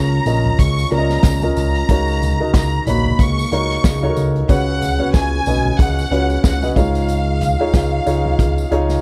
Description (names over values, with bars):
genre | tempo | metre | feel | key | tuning
piano-driven pop | 92 BPM | 4/4 | swing 56% on 16ths | Db mixolydian | A4 = 442 Hz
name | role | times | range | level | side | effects
rich symphonic violin section | melody | 0.0-9.0 s | F5 to Db6 | -26 LUFS | equal | none
felt-muted upright piano | accompaniment | 0.0-9.0 s | Ab2 to Eb5 | -23 LUFS | equal | none
fat analog bass | bass | 0.0-9.0 s | Bb1 to Db2 | -21 LUFS | equal | none
unplugged drum kit | drums | 0.3-9.0 s | hi-hat, kick drum, snare drum, toms | -20 LUFS | equal | none
tambourine | percussion | 0.3-9.0 s | none | -41 LUFS | equal | none
room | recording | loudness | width
little or no reverb | none | -17 LUFS | mono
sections
0.0-9.0 A section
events
none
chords
0.0 Bbm; 1.9 Gb6; 4.5 Cbsus2; 6.8 Dbadd9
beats
0.59 1.24 | 1.89 2.54 3.19 3.84 | 4.49 5.14 5.79 6.44 | 7.09 7.74 8.39